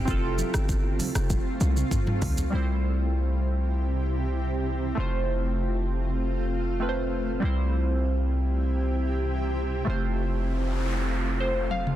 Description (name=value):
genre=afrobeats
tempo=98 BPM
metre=4/4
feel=straight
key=C major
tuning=A4 = 440 Hz
part: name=glassy digital keys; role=accompaniment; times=0.0-12.0 s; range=G3 to F5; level=-32 LUFS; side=right 1 dB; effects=chorus, phaser
part: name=granular cloud pad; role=sustained chords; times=0.0-12.0 s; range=C3 to G4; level=-32 LUFS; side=equal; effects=built-in reverb
part: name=hard-hitting 808-style bass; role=bass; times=0.1-12.0 s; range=F1 to C2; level=-26 LUFS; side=equal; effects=none
part: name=afro-pop drum kit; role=drums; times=0.1-2.5, 11.7-12.0 s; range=hi-hat, kick drum, rim click, shaker, toms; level=-28 LUFS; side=equal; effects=soft clipping on snare
part: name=congas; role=percussion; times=0.4-2.4 s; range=none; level=-36 LUFS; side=right 1 dB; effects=none
part: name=noise sweep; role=sound effects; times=10.3-12.0 s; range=none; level=-35 LUFS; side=right 2 dB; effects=none
room=digital ambience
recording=dense, heavily limited modern master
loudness=-24 LUFS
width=side -12 dB against mid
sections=0.0-2.5 A section; 2.5-12.0 B section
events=drum fill 1.3-2.5, 11.7; noise sweep 10.3-12.0; synth keys fill 11.1-12.0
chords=0.1 F; 2.5 C; 5.0 F; 7.4 C; 9.9 F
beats=| 0.08 0.69 1.30 1.91 | 2.53 3.14 3.75 4.36 | 4.97 5.59 6.20 6.81 | 7.42 8.04 8.65 9.26 | 9.87 10.48 11.10 11.71